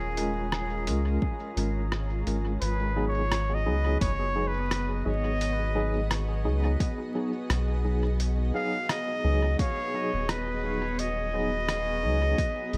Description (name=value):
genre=ambient dub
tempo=86 BPM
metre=4/4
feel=swing 56% on 16ths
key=G# dorian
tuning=A4 = 439 Hz
part: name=trumpet with straight mute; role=melody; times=0.0-12.8 s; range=G#4 to E#5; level=-34 LUFS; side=equal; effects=vintage 12-bit sampler grit, dub echo
part: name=granular cloud pad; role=sustained chords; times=0.0-12.8 s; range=G#3 to A#5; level=-39 LUFS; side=equal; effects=built-in reverb, vintage 12-bit sampler grit
part: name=soft dub sub bass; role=bass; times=0.0-12.8 s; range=D#1 to C#2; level=-31 LUFS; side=equal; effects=none
part: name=mellow tine electric piano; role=stabs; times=0.2-12.8 s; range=F#3 to A#4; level=-36 LUFS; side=equal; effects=medium tremolo, dub echo
part: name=lo-fi sampler-style drum kit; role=drums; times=0.2-12.8 s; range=hi-hat, rim click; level=-37 LUFS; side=equal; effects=studio reverb, dub echo
part: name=electronic kick drum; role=drums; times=1.2-12.5 s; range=none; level=-31 LUFS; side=equal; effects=studio reverb
room=light reverb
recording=vinyl crackle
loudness=-28 LUFS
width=mono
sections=0.0-2.6 A section; 2.6-12.8 B section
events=none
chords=0.0 A#m7; 2.6 G#m7